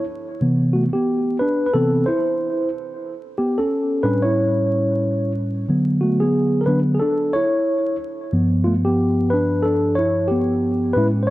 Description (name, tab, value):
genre	hip hop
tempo	91 BPM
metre	4/4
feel	swing 60% on 16ths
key	unclear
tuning	A4 = 438 Hz
part	mellow tine electric piano	solo	0.0-11.3 s	G2 to C#5	-17 LUFS	equal	tape echo
room	light reverb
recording	dark, warm production, vinyl crackle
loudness	-17 LUFS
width	side -16 dB against mid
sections	0.0-11.3 A section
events	tine electric piano solo 0.0-11.3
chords	0.4 Cmaj7; 3.0 A7; 5.7 D6; 8.3 G9